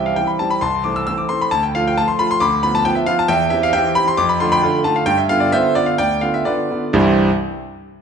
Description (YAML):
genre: classical-period piano sonatina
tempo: 133 BPM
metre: 4/4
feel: rubato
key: C major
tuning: A4 = 440 Hz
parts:
  - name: bright concert grand piano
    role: solo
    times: 0.0-7.3 s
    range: C2 to E6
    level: -15 LUFS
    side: equal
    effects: none
room: wet recital hall reverb, RT60 1.5 s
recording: nothing above 10.4 kHz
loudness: -15 LUFS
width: side -6 dB against mid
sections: 0.0-6.9 A section; 6.9-8.0 B section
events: none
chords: 0.0 C; 0.6 Am/C; 1.5 Dm; 2.4 Bdim/D; 3.3 C/E; 4.2 Dm/F; 5.1 G7; 6.9 C